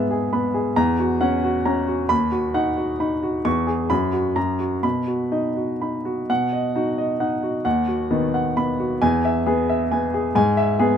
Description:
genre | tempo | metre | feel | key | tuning
classical, virtuoso piano study | 133 BPM | 3/4 | rubato | B major | A4 = 440 Hz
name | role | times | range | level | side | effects
warm baby grand piano | solo | 0.0-11.0 s | D#2 to C#6 | -19 LUFS | equal | none
room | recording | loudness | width
little or no reverb | close, detailed microphones | -19 LUFS | side -8 dB against mid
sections
0.0-6.3 A section; 6.3-11.0 A section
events
none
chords
0.0 E/G#; 0.8 F#7/E; 2.1 B/D#; 3.5 C#m/E; 3.9 B5/F#; 4.4 F#; 4.8 B; 7.7 B/D#; 9.0 E; 10.4 E/G#

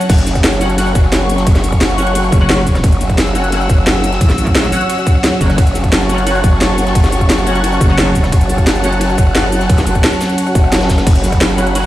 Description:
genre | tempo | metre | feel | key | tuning
dark technical drum and bass | 175 BPM | 4/4 | straight | F# minor | A4 = 440 Hz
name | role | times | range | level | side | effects
dark analog pad | sustained chords | 0.0-11.9 s | F#3 to A5 | -19 LUFS | right 1 dB | chorus, sidechain pumping
band-passed chord stab | stabs | 0.0-8.9, 11.6-11.9 s | C#4 to F#5 | -22 LUFS | left 1 dB | phaser, ensemble chorus, tape echo
drum and bass drum kit | drums | 0.0-11.9 s | cabasa, crash cymbal, hi-hat, ride cymbal, rim click, snare drum | -18 LUFS | equal | none
growl bass | bass | 0.1-11.9 s | F#1 to C#2 | -17 LUFS | equal | chorus, overdrive
crunchy breakbeat drum kit | drums | 0.1-11.8 s | ride cymbal, snare drum | -28 LUFS | equal | none
electronic kick drum | drums | 0.1-11.4 s | none | -12 LUFS | equal | none
dark studio string section | texture | 0.1-11.9 s | C#4 to F#6 | -21 LUFS | left 1 dB | sidechain pumping
metallic wobble bass | bass | 2.3-5.6, 7.8-8.3 s | F#1 to A1 | -15 LUFS | equal | chorus
swell | sound effects | 10.6-11.1 s | none | -26 LUFS | left 3 dB | none
room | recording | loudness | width
digital ambience | played on a big sound system in a bare room, stone room reverb | -10 LUFS | side -14 dB against mid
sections
0.1-11.9 A section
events
drop 0.1-11.9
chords
0.1 F#5

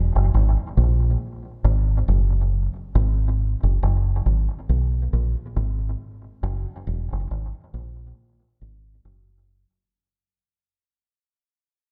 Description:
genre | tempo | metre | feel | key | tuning
reggae | 69 BPM | 4/4 | swing 57% on 16ths | unclear | A4 = 440 Hz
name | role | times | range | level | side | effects
deep dub fingered electric bass | solo | 0.0-9.6 s | E1 to B1 | -23 LUFS | equal | tape echo
room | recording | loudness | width
light reverb | dark, warm production | -23 LUFS | mono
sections
0.0-2.9 A section; 2.9-9.9 B section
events
fade-out 2.9-9.9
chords
none

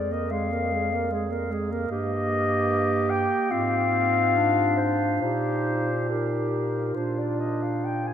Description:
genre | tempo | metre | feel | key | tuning
classical, lyrical piece for single-reed quartet | 67-76 BPM | 4/4 | rubato | Eb major | A4 = 440 Hz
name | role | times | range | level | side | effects
dark clarinet | melody | 0.0-8.1 s | Bb4 to Ab5 | -26 LUFS | left 4 dB | none
warm clarinet | second line | 0.0-8.1 s | F4 to Bb4 | -30 LUFS | right 4 dB | none
mellow clarinet | accompaniment | 0.0-8.1 s | Ab3 to Eb4 | -30 LUFS | equal | none
mellow bass clarinet | bass | 0.0-8.1 s | F2 to Bb2 | -30 LUFS | right 2 dB | none
room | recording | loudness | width
wet cathedral reverb, RT60 7.2 s | in a vast, echoing space | -22 LUFS | side -9 dB against mid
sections
0.0-8.1 A section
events
none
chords
0.0 Bb5/F; 1.9 Eb/G; 3.5 Fm/Ab; 5.2 Eb/Bb; 7.0 Bb

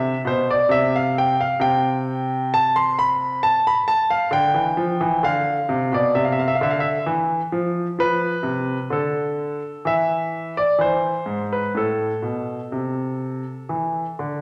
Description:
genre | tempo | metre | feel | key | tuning
classical, baroque-style suite movement for grand piano | 65 BPM | 4/4 | uneven beats, rubato | A minor | A4 = 440 Hz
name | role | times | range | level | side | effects
clear concert grand piano | solo | 0.0-14.4 s | G#2 to C6 | -21 LUFS | equal | none
room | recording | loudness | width
wet recital hall reverb, RT60 1.3 s | none | -21 LUFS | mono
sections
0.0-14.4 A section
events
none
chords
0.0 C; 0.7 N.C.; 4.3 Dm; 6.2 Cadd11; 8.0 Dm; 9.9 N.C.; 10.8 E; 11.8 Am

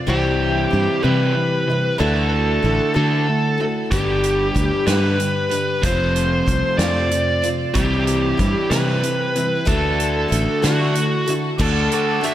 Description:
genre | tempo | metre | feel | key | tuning
folk rock and heartland rock | 63 BPM (dotted quarters) | 6/8 | straight | unclear | A4 = 440 Hz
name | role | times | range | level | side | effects
picked twelve-string acoustic guitar | accompaniment | 0.0-12.3 s | C3 to C5 | -24 LUFS | left 3 dB | none
crunchy overdriven guitar | riff | 0.0-12.3 s | F2 to F#4 | -24 LUFS | right 1 dB | none
bluesy overdriven lead guitar | melody | 0.1-12.3 s | F#4 to E5 | -21 LUFS | equal | distortion, slapback echo, analog delay
fingered electric bass | bass | 0.1-11.9 s | F1 to D3 | -22 LUFS | equal | none
loose indie drum kit | drums | 3.9-12.3 s | crash cymbal, hi-hat, kick drum, snare drum | -24 LUFS | right 1 dB | none
musette accordion | sustained chords | 11.6-12.3 s | A4 to D6 | -29 LUFS | right 3 dB | none
room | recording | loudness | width
moderate lush hall reverb, RT60 2.6 s | big arena sound | -16 LUFS | side -12 dB against mid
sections
0.0-11.6 A section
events
none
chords
0.1 C; 2.0 Dadd9; 3.9 G; 5.8 F; 7.8 C; 9.7 Dadd9; 11.6 D

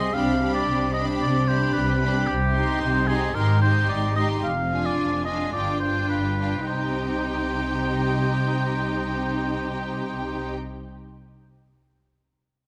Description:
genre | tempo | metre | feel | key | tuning
classical | 112 BPM | 4/4 | straight | C minor | A4 = 440 Hz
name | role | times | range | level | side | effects
warm symphonic violin section | melody | 0.0-10.5 s | G5 to C6 | -39 LUFS | equal | none
rich symphonic violin section | second line | 0.0-10.5 s | F4 to Ab4 | -35 LUFS | equal | none
warm oboe | second line | 0.0-10.5 s | G4 to F5 | -30 LUFS | equal | none
rich symphonic viola section | accompaniment | 0.0-10.5 s | C4 to Eb4 | -32 LUFS | equal | none
rich symphonic cello section | bass | 0.0-10.5 s | F2 to C3 | -30 LUFS | equal | none
warm symphonic double bass section | bass | 0.0-10.5 s | F1 to C2 | -30 LUFS | equal | none
room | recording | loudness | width
moderate concert hall reverb, RT60 2.2 s | none | -24 LUFS | mono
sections
0.0-6.7 A section; 6.7-11.0 B section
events
slowing down 1.2-6.7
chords
0.1 G/C; 2.3 Cm; 3.3 Abmaj7; 4.4 Ddim/F; 5.5 G7; 6.7 Cm

